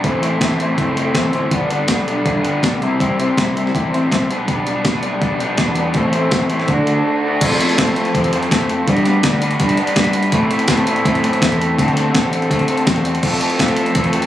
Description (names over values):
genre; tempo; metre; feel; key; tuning
indie rock; 164 BPM; 4/4; straight; G major; A4 = 440 Hz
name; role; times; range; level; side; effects
electric guitar through a small old amp; riff; 0.0-14.3 s; G2 to C5; -19 LUFS; left 3 dB; wide subtle chorus
raw garage guitar; riff; 0.0-14.3 s; A2 to C5; -21 LUFS; right 3 dB; overdrive, wide subtle chorus, slapback echo
growling fingered electric bass; bass; 0.0-14.3 s; F#1 to F3; -21 LUFS; equal; overdrive
clean 12-bit digital drum machine; drums; 0.0-14.3 s; crash cymbal, hi-hat, kick drum, snare drum; -19 LUFS; equal; overdrive
room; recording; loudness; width
light reverb; recorded on a phone in the room, club reverb; -14 LUFS; side -12 dB against mid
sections
0.0-7.4 A section; 7.4-14.3 B section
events
break 7.1-7.4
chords
0.0 Am; 1.5 G; 2.8 C; 4.3 G/B; 6.0 Am; 6.7 D; 7.4 Fmaj7; 8.9 Gmaj7; 10.3 Amadd9; 11.8 D7sus4; 13.2 Fmaj7